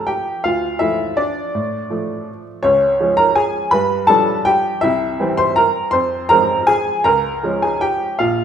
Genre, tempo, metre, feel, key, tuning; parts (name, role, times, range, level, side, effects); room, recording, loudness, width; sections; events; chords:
classical, piano waltz; 162 BPM; 3/4; uneven beats, rubato; A4 = 437 Hz
warm upright piano; solo; 0.0-8.4 s; Bb1 to C6; -15 LUFS; equal
moderate recital hall reverb, RT60 1.8 s; minimal, uncompressed stereo recording; -14 LUFS; side -8 dB against mid
0.0-8.4 A section
0.4 Dm; 2.6 Db; 3.7 G7; 4.8 C; 5.9 Fm; 7.1 Db